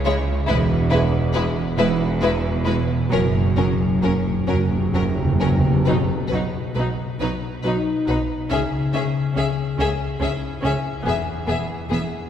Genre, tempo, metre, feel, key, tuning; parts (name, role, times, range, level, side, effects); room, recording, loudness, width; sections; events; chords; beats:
cinematic, emotional film score for orchestra; 46 BPM (dotted quarters); 6/8; rubato; B major; A4 = 440 Hz
rich studio violin section; melody; 0.0-12.0 s; A#4 to E5; -29 LUFS; left 3 dB
warm studio violin section; second line; 0.0-12.0 s; C#4 to G#4; -28 LUFS; left 3 dB
concert harp; arpeggios; 0.0-12.3 s; E2 to G#4; -26 LUFS; left 4 dB
clear studio double bass section; bass; 0.0-12.0 s; E1 to C#2; -25 LUFS; right 2 dB
rich studio cello section; bass; 0.0-12.0 s; E2 to C#3; -27 LUFS; right 3 dB
rich studio viola section; accompaniment; 0.1-12.0 s; F#3 to C#4; -28 LUFS; right 2 dB
timpani; percussion; 3.1-7.1 s; F#2 to B2; -24 LUFS; right 1 dB
wet church reverb, RT60 3.2 s; recorded in a church or concert hall; -19 LUFS; side -9 dB against mid
0.0-5.9 A section; 5.9-12.3 B section
timpani fill 3.1-5.9
0.5 E; 3.1 F#; 5.9 B; 8.5 C#m; 11.1 E
| 0.49 1.78 | 3.11 4.48 | 5.86 7.19 | 8.50 9.78 | 11.05